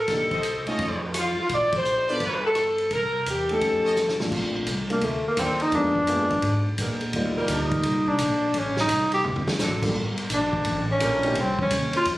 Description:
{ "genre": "jazz, big band swing", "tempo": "170 BPM", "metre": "4/4", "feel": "swing 65% on 8ths", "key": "Bb major", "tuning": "A4 = 440 Hz", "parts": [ { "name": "warm saxophone section", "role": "melody", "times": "0.0-4.2 s", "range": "F4 to D5", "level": "-23 LUFS", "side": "left 1 dB", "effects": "none" }, { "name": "warm concert grand piano", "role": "accompaniment", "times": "0.1-11.4 s", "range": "Bb2 to D5", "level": "-30 LUFS", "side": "equal", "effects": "none" }, { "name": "upright bass", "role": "bass", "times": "0.1-12.2 s", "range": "G1 to Bb2", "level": "-30 LUFS", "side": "equal", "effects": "none" }, { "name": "vintage drum kit", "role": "drums", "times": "0.1-12.2 s", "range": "crash cymbal, hi-hat, kick drum, ride cymbal, rim click, snare drum, toms", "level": "-30 LUFS", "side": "equal", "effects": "none" }, { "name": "brilliant trumpet section", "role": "stabs", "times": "0.3-3.9 s", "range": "F4 to Eb5", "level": "-30 LUFS", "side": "right 1 dB", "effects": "none" }, { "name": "warm tenor saxophone", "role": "melody", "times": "4.9-12.1 s", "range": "A3 to G4", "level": "-23 LUFS", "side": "equal", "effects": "none" }, { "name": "clear saxophone section", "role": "sustained chords", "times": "5.4-11.4 s", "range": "D3 to Bb4", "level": "-31 LUFS", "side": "equal", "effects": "none" } ], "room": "moderate large studio reverb, RT60 1.2 s", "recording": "recorded on a phone in the room, studio reverb, compression", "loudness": "-22 LUFS", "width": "side -17 dB against mid", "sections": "0.0-4.3 A section; 4.3-12.2 B section", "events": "band accent 1.7; drum fill 4.0-4.3, 9.3-9.6; tenor saxophone solo 4.3-12.2", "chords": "0.1 Cm7; 0.8 Faug7; 1.5 Bbmaj7; 2.2 G7; 2.9 Cm7; 3.6 F7b13; 4.3 Bbmaj7; 5.7 Bb7b9; 7.1 Ebmaj7; 8.5 Adim; 9.3 D7; 10.0 Gm7; 11.4 Cm" }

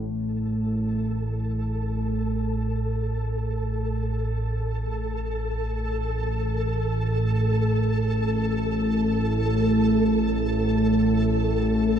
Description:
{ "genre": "ambient", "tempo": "free time", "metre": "none", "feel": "none", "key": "unclear", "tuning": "A4 = 440 Hz", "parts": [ { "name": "analog drone", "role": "drone", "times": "0.0-12.0 s", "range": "A1 to A2", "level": "-23 LUFS", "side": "equal", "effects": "chorus" }, { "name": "flickering grainy texture", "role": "texture", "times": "0.5-12.0 s", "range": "A4", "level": "-30 LUFS", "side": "right 1 dB", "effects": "built-in reverb" } ], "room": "wet huge ambient reverb, RT60 7.1 s", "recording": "none", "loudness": "-22 LUFS", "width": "side -8 dB against mid", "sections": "0.1-12.0 A section", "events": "none", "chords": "none" }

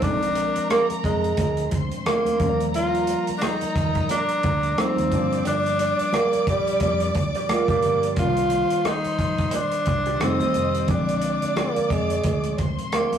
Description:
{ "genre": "lush 1970s-style soul", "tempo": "88 BPM", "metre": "4/4", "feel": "swing 58% on 16ths", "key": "unclear", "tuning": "A4 = 440 Hz", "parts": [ { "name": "breathy tenor saxophone", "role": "melody", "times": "0.0-13.2 s", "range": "G3 to F4", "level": "-23 LUFS", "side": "right 1 dB", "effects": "none" }, { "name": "warm studio string section", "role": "second line", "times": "0.0-13.2 s", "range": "Bb4 to Eb6", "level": "-30 LUFS", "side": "right 1 dB", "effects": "none" }, { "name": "barky tine electric piano", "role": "accompaniment", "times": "0.0-13.2 s", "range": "D3 to D5", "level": "-29 LUFS", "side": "left 1 dB", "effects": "overdrive, phaser" }, { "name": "electric guitar through a small old amp", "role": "riff", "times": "0.0-0.2, 7.4-10.9 s", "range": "D4 to D5", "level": "-30 LUFS", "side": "right 4 dB", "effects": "none" }, { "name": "vintage muted fingered electric bass", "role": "bass", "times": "0.0-12.8 s", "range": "F1 to F2", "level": "-29 LUFS", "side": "equal", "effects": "none" }, { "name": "modern studio drum kit", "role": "drums", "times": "0.0-13.2 s", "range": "hi-hat, kick drum, rim click", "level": "-27 LUFS", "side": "equal", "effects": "none" }, { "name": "congas", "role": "percussion", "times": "0.7-13.2 s", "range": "none", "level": "-34 LUFS", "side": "right 5 dB", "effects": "none" } ], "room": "moderate studio reverb, RT60 0.6 s", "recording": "rough rehearsal-room recording, warm saturation, small room ambience", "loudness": "-20 LUFS", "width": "side -8 dB against mid", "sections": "0.0-13.2 A section", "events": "none", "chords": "0.0 Bb7; 2.4 Ebmaj7; 5.1 Gm7; 8.2 Cm7; 10.2 F7; 10.9 Bb7" }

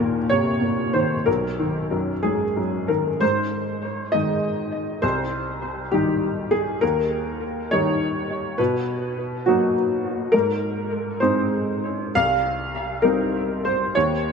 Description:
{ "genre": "neoclassical minimalist piano", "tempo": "60-70 BPM (dotted quarters)", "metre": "6/8", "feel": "rubato", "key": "Ab major", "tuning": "A4 = 440 Hz", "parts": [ { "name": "clear upright piano", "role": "solo", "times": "0.0-14.3 s", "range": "B1 to F5", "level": "-20 LUFS", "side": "equal", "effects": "analog chorus, tape echo" } ], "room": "wet plate reverb, RT60 3.4 s", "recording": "dreamy mix soaked in reverb", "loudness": "-20 LUFS", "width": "side -5 dB against mid", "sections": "0.0-3.2 A section; 3.2-14.3 B section", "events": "none", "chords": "0.0 Eb5; 1.3 Bmaj7; 3.2 Ab; 5.0 Cm; 6.8 Eb; 8.6 Bmaj7; 10.3 Ab; 12.1 Cm" }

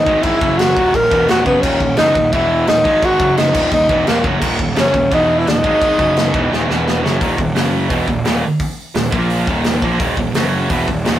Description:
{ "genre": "heavy metal", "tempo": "172 BPM", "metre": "4/4", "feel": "straight", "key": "Eb phrygian", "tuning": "A4 = 440 Hz", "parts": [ { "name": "breathy tenor saxophone", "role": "melody", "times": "0.0-6.8 s", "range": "Bb3 to Bb4", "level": "-14 LUFS", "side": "equal", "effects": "none" }, { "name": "high-gain distorted guitar", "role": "riff", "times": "0.0-11.2 s", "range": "Eb2 to Bb3", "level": "-20 LUFS", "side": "right 5 dB", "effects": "distortion" }, { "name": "sludgy distorted guitar", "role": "riff", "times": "0.0-11.2 s", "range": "Eb2 to Bb3", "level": "-24 LUFS", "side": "left 5 dB", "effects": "overdrive" }, { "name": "fuzz picked electric bass", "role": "bass", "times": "0.0-11.2 s", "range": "Eb1 to Bb1", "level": "-21 LUFS", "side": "equal", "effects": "overdrive" }, { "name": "modern studio drum kit", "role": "drums", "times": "0.1-11.1 s", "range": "china cymbal, crash cymbal, hi-hat, kick drum, snare drum", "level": "-20 LUFS", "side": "left 1 dB", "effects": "none" } ], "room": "moderate studio reverb, RT60 0.6 s", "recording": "rough rehearsal-room recording, warm saturation", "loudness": "-13 LUFS", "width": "side -12 dB against mid", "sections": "0.0-7.2 A section; 7.2-11.2 B section", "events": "drum fill 6.5-7.2", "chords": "0.1 Ab5; 0.4 Gb5; 0.8 Ebm; 2.3 E5; 2.7 Eb5; 2.9 Ab5; 3.2 Gb5; 3.5 Ebm; 5.1 E5; 5.5 Eb5; 5.6 Ab5; 6.0 Gb5; 6.3 Eb5; 6.7 E5; 7.0 Gb5; 7.2 Eb5; 7.6 Gb5; 7.9 Eb5; 9.1 Bb5; 9.5 Eb5; 10.4 Gb5" }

